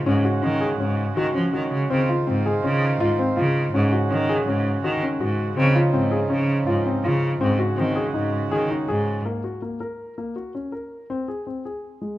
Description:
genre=contemporary instrumental, chamber music in an uneven meter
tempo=163 BPM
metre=5/4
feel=straight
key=unclear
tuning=A4 = 440 Hz
part: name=hand-pumped harmonium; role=sustained chords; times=0.0-9.2 s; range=Db3 to C5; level=-28 LUFS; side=right 5 dB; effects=none
part: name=dark grand piano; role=arpeggios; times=0.0-12.2 s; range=Ab3 to Bb4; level=-24 LUFS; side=left 2 dB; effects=none
part: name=rich cello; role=bass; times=0.0-9.2 s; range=Ab2 to F3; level=-23 LUFS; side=equal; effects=none
room=moderate recital hall reverb, RT60 1.7 s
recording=close, detailed microphones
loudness=-20 LUFS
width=side -15 dB against mid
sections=0.0-9.2 A section; 9.2-12.2 B section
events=none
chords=0.1 Ab7sus4; 1.9 Dbmaj9; 3.7 Ab7sus4; 5.6 Dbmaj9; 7.4 Ab7; 9.2 N.C.; 11.1 Ab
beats=| 0.06 0.43 0.80 1.17 1.53 | 1.90 2.27 2.64 3.00 3.37 | 3.74 4.11 4.47 4.84 5.21 | 5.58 5.94 6.31 6.68 7.04 | 7.41 7.78 8.14 8.51 8.88 | 9.25 9.62 9.98 10.35 10.72 | 11.09 11.46 11.83

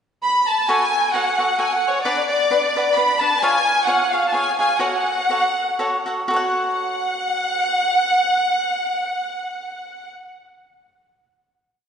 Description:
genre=mexican folk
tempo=116-133 BPM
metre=3/4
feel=swing 54% on 8ths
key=F# harmonic minor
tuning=A4 = 440 Hz
part: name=rich studio violin section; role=melody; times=0.2-10.1 s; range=C#5 to B5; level=-18 LUFS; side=equal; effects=none
part: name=cavaquinho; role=accompaniment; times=0.7-10.5 s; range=D4 to F#5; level=-23 LUFS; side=equal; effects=none
room=wet concert hall reverb, RT60 2.1 s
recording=heard from further back in the room, nothing above 10.8 kHz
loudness=-17 LUFS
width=side -7 dB against mid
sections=0.0-0.7 pickup bar; 0.7-6.3 A section; 6.3-9.3 final chord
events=slowing down 3.4-6.3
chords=0.0 N.C.; 0.7 F#m; 2.1 Bm; 3.4 C#; 4.8 F#m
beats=0.22 | 0.68 1.14 1.60 | 2.05 2.51 2.96 | 3.42 3.87 4.33 | 4.80 5.28 5.79 | 6.30 6.81 7.32 | 7.82 8.33 8.84

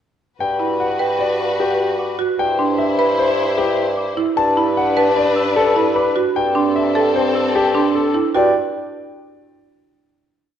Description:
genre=classical, minimalist pattern music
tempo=151 BPM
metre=5/4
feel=straight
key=G major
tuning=A4 = 440 Hz
part: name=clear concert grand piano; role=melody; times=0.4-8.5 s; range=G4 to A5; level=-20 LUFS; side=left 4 dB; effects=none
part: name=warm symphonic violin section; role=sustained chords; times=0.4-8.1 s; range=C4 to C5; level=-23 LUFS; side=left 4 dB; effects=none
part: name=clear bassoon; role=bass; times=0.4-8.5 s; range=G2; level=-21 LUFS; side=right 2 dB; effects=none
part: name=buzzing marimba with medium hard mallets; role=arpeggios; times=0.6-8.5 s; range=D4 to B4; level=-21 LUFS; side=right 6 dB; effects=none
part: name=celesta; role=arpeggios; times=0.6-8.5 s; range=G5 to E6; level=-25 LUFS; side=left 2 dB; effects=none
room=wet scoring stage reverb, RT60 1.5 s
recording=worn, warbling old tape, cassette tape, warbly pitch drift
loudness=-15 LUFS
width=side -9 dB against mid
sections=0.4-8.3 A section; 8.3-10.3 final chord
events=none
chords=0.4 Gmaj7; 2.4 Cmaj7/G; 4.4 Bm7/G; 6.4 Am7/G; 8.3 G5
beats=| 0.40 0.80 1.20 1.59 1.99 | 2.39 2.79 3.18 3.58 3.98 | 4.38 4.77 5.17 5.57 5.96 | 6.36 6.76 7.16 7.55 7.95 | 8.35

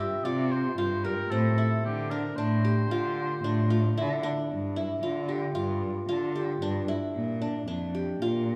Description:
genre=contemporary instrumental, chamber music in an uneven meter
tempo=113 BPM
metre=5/4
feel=straight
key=D minor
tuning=A4 = 441 Hz
part: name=warm oboe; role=melody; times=0.0-4.2 s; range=G4 to E5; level=-36 LUFS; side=equal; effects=none
part: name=qanun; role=arpeggios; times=0.0-8.6 s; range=C4 to G4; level=-33 LUFS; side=equal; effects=none
part: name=warm cello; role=bass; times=0.0-8.6 s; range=F2 to D3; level=-31 LUFS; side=equal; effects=none
room=wet recital hall reverb, RT60 1.6 s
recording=small room ambience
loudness=-28 LUFS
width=mono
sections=0.0-8.6 A section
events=none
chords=0.0 Csus4; 1.8 Dm7; 4.5 G5; 7.2 Bb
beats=0.25 0.79 1.32 | 1.85 2.38 2.91 3.44 3.97 | 4.50 5.03 5.57 6.09 6.63 | 7.16 7.69 8.22

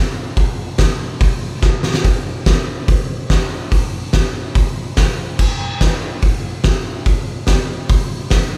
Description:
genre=rock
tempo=143 BPM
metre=4/4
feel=straight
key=none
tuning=none
part: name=oversized low-tuned drum kit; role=drums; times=0.4-8.4 s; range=crash cymbal, hi-hat, kick drum, snare drum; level=-18 LUFS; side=equal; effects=none
room=light reverb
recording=band playing live in one room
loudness=-18 LUFS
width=mono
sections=0.0-2.0 A section; 2.0-8.6 B section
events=drum fill 1.6-2.0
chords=none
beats=| 0.37 0.79 1.20 1.62 | 2.04 2.46 2.88 3.30 | 3.72 4.14 4.56 4.97 | 5.39 5.81 6.23 6.65 | 7.07 7.48 7.90 8.32

